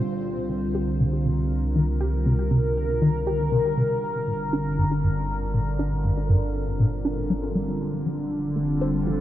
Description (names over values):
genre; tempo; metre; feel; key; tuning
ambient, sequencer-driven space music; 119 BPM; 4/4; straight; unclear; A4 = 440 Hz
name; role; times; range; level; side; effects
phased analog pad; sustained chords; 0.0-9.2 s; D3 to Bb4; -26 LUFS; equal; phaser, chorus
resonant blip pluck; riff; 0.0-9.1 s; G2 to C5; -26 LUFS; equal; phaser, ping-pong delay
round analog bass; bass; 0.0-9.2 s; F1 to C2; -29 LUFS; equal; none
room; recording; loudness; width
moderate huge ambient reverb, RT60 6.9 s; worn, warbling old tape, cassette tape, warbly pitch drift, nothing above 11.0 kHz; -22 LUFS; side -13 dB against mid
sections
0.0-9.2 A section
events
none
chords
0.0 C7(no3); 4.0 Gm; 8.1 F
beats
0.49 1.00 1.50 | 2.01 2.51 3.02 3.52 | 4.02 4.53 5.03 5.54 | 6.04 6.54 7.05 7.55 | 8.06 8.56 9.07